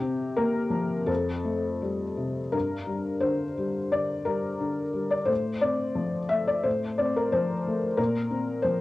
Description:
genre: neoclassical minimalist piano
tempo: 81-93 BPM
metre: 4/4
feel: rubato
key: G minor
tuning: A4 = 440 Hz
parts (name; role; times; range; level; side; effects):
- felt-muted upright piano; solo; 0.0-8.8 s; F2 to E5; -25 LUFS; left 2 dB; cassette tape
room: light reverb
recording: home recording on cassette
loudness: -25 LUFS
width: side -17 dB against mid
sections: 0.0-2.5 A section; 2.5-8.8 A section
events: none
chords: 0.0 C7sus4; 1.1 Fadd9; 2.5 Gm; 5.3 F/A; 8.0 Bbsus2

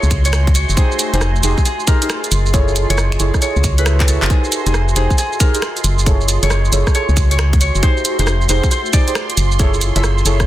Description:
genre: UK garage, two-step garage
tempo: 136 BPM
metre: 4/4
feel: swing 65% on 16ths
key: unclear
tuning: A4 = 441 Hz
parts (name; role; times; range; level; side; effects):
- concert harp; melody; 0.0-10.5 s; Ab4 to Fb5; -24 LUFS; left 1 dB; digital delay
- warm analog pad; sustained chords; 0.0-10.5 s; C6; -29 LUFS; right 8 dB; chorus, sidechain pumping
- deep mellow chord stab; stabs; 0.0-10.5 s; Eb4 to Db5; -23 LUFS; right 1 dB; chorus
- organ-like FM bass; bass; 0.0-10.5 s; F1 to Db2; -15 LUFS; equal; none
- garage drum kit; drums; 0.0-10.5 s; finger snaps, handclaps, hi-hat, rim click, shaker; -20 LUFS; right 2 dB; studio reverb, soft clipping on snare
- granular cloud pad; texture; 0.0-10.5 s; F4 to Gb4; -27 LUFS; equal; built-in reverb, sidechain pumping
- electronic kick drum; drums; 0.1-10.5 s; none; -15 LUFS; equal; studio reverb
room: digital ambience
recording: dense, heavily limited modern master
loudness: -13 LUFS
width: side -14 dB against mid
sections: 0.0-10.5 A section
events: drum fill 4.0-4.3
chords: 0.0 Gbm9; 0.8 Fm9; 2.5 Gbm9; 4.3 Fm9; 6.1 Gbm9; 7.8 Fm9; 9.6 Gbm9

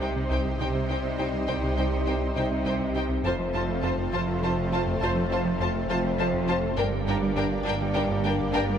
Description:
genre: cinematic, hybrid orchestral and electronic film score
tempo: 68 BPM (dotted quarters)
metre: 6/8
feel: straight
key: unclear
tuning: A4 = 443 Hz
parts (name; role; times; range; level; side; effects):
- rich symphonic violin section; melody; 0.0-8.6 s; G5 to A5; -35 LUFS; left 2 dB; none
- rich symphonic violin section; second line; 0.0-8.6 s; Bb4 to C5; -34 LUFS; left 1 dB; none
- bright symphonic viola section; accompaniment; 0.0-8.6 s; D4 to F4; -35 LUFS; right 1 dB; none
- analog string pad; sustained chords; 0.0-8.8 s; Bb3 to D5; -34 LUFS; equal; ensemble chorus
- mellow French horn section; sustained chords; 0.0-8.8 s; G3 to Eb4; -32 LUFS; left 4 dB; none
- chorused synth bass; riff; 0.0-8.8 s; C2 to G3; -32 LUFS; right 2 dB; none
- bright symphonic cello section; bass; 0.0-8.8 s; F2 to C3; -32 LUFS; right 2 dB; none
- rich symphonic double bass section; bass; 0.0-8.8 s; F1 to C2; -32 LUFS; right 3 dB; none
- warm sub bass; bass; 0.0-8.8 s; F1 to C2; -35 LUFS; equal; none
room: moderate scoring stage reverb, RT60 1.9 s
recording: none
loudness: -24 LUFS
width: side -8 dB against mid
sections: 0.0-8.8 A section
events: none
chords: 0.0 Cm; 3.2 F; 6.8 Gm

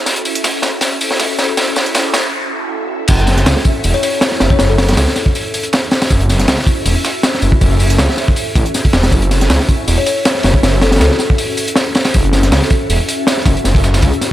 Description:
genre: drum and bass, jungle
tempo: 159 BPM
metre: 4/4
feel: swing 54% on 16ths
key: F# minor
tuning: A4 = 440 Hz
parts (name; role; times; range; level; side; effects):
- crunchy breakbeat drum kit; drums; 0.1-14.3 s; crash cymbal, hi-hat, kick drum, snare drum; -14 LUFS; equal; high-pass filter on kick, high-pass filter on hats, high-pass filter on cymbals, high-pass filter on snare, high-pass filter on room
- dusty soul sampler-style drum kit; drums; 0.1-14.3 s; hi-hat, snare drum, tambourine; -22 LUFS; right 1 dB; overdrive, high-pass filter on perc, high-pass filter on hats, high-pass filter on snare
- noise sweep; sound effects; 1.9-3.1 s; none; -25 LUFS; right 2 dB; none
- detuned saw bass; bass; 3.1-14.1 s; E1 to C#2; -13 LUFS; equal; tube saturation
- kalimba; melody; 3.9-5.2, 10.0-11.5 s; A4 to C#5; -21 LUFS; left 4 dB; dub echo
room: light reverb, small room ambience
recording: none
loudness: -11 LUFS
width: side -13 dB against mid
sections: 0.0-3.1 A section; 3.1-14.3 B section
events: build-up 0.0-3.1; drum fill 0.1-2.3; noise sweep 1.9-3.1; break 2.3-3.1; drop 3.1-14.3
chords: 0.0 F#m7

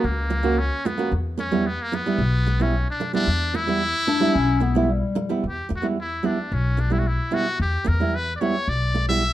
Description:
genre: klezmer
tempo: 111 BPM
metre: 4/4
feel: straight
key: E dorian sharp4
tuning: A4 = 441 Hz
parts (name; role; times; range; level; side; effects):
- trumpet with metal mute; melody; 0.0-9.3 s; A#3 to E5; -26 LUFS; left 1 dB; none
- nylon-string guitar; accompaniment; 0.0-9.2 s; G3 to F#4; -24 LUFS; right 3 dB; none
- upright bass; bass; 0.0-9.3 s; B1 to E2; -24 LUFS; left 1 dB; none
- warm clarinet; second line; 4.1-5.4 s; G3 to D4; -23 LUFS; left 5 dB; none
room: moderate small room reverb, RT60 0.6 s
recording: dark, warm production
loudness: -20 LUFS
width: side -14 dB against mid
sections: 0.0-5.4 A section; 5.4-9.3 B section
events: muted trumpet solo 5.4-9.3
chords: 0.0 F#; 1.1 Em

